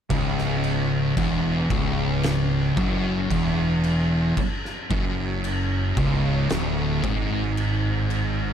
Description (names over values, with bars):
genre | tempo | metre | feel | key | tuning
stoner and doom metal | 56 BPM | 4/4 | straight | C# minor | A4 = 440 Hz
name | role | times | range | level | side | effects
thick fuzz guitar | riff | 0.1-8.5 s | C#2 to G#2 | -25 LUFS | left 8 dB | distortion
thick fuzz guitar | riff | 0.1-8.5 s | C#2 to G#2 | -26 LUFS | right 9 dB | distortion
modern bright fingered electric bass | bass | 0.1-8.5 s | C#1 to G#1 | -28 LUFS | equal | overdrive
oversized low-tuned drum kit | drums | 0.1-8.3 s | crash cymbal, kick drum, snare drum | -28 LUFS | equal | none
room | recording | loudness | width
little or no reverb | dark, warm production | -21 LUFS | side -8 dB against mid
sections
0.1-8.5 A section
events
none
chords
0.1 C#m